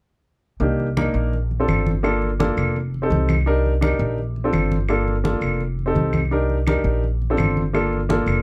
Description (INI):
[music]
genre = Afro-Cuban jazz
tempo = 168 BPM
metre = 4/4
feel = straight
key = Bb major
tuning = A4 = 440 Hz
[part]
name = warm baby grand piano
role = accompaniment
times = 0.6-8.4 s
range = Bb3 to Bb4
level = -24 LUFS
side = equal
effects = none
[part]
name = upright bass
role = bass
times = 0.6-8.4 s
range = F1 to C2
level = -24 LUFS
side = equal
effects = none
[part]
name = congas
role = percussion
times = 0.6-8.4 s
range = none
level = -29 LUFS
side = equal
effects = none
[part]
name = claves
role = percussion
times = 1.0-8.4 s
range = none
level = -32 LUFS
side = equal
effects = none
[sound]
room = light reverb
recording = dark, warm production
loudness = -21 LUFS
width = mono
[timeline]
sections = 0.6-8.4 A section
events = none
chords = 0.6 Cm7; 1.3 Bbmaj7; 2.0 Gm7; 2.8 F7; 3.5 Cm7; 4.2 Bbmaj7; 4.9 Gm7; 5.6 F7; 6.3 Cm7; 7.0 Bbmaj7; 7.7 Gm7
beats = | 0.61 0.96 1.32 1.68 | 2.04 2.39 2.75 3.11 | 3.46 3.82 4.18 4.54 | 4.89 5.25 5.61 5.96 | 6.32 6.67 7.03 7.39 | 7.74 8.10